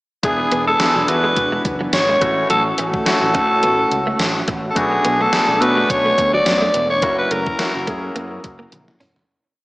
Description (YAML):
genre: 1980s-style pop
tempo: 106 BPM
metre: 4/4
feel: swing 55% on 16ths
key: unclear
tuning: A4 = 440 Hz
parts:
  - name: raspy alto saxophone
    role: melody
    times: 0.2-8.2 s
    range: G#4 to D5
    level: -17 LUFS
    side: equal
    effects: none
  - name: clear concert grand piano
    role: accompaniment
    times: 0.2-9.3 s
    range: A2 to G#4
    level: -22 LUFS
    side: left 1 dB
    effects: shimmer reverb
  - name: brassy analog pad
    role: sustained chords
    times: 0.2-9.3 s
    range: E3 to G#5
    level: -27 LUFS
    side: equal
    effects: chorus
  - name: overdriven picked electric bass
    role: bass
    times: 0.2-9.2 s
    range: E1 to B2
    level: -28 LUFS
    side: equal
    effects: none
  - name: gated 80s digital drum machine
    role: drums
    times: 0.2-9.3 s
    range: hi-hat, kick drum, snare drum, toms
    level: -23 LUFS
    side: equal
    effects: gated reverb, gated reverb snare
  - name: direct-recorded clean electric guitar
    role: riff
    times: 0.4-9.1 s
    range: F#3 to C#4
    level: -28 LUFS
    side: right 1 dB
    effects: none
room: wet lush hall reverb, RT60 2.0 s, digital ambience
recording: big arena sound, small speaker sound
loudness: -15 LUFS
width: side -20 dB against mid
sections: 0.2-9.3 pre-chorus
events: fade-out 7.0-9.3; drum fill 8.7-9.3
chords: 0.2 E7; 2.2 A6; 4.8 Bm7; 7.0 F#7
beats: | 0.23 0.80 1.36 1.93 | 2.50 3.06 3.63 4.20 | 4.76 5.33 5.89 6.46 | 7.03 7.59 8.16 8.72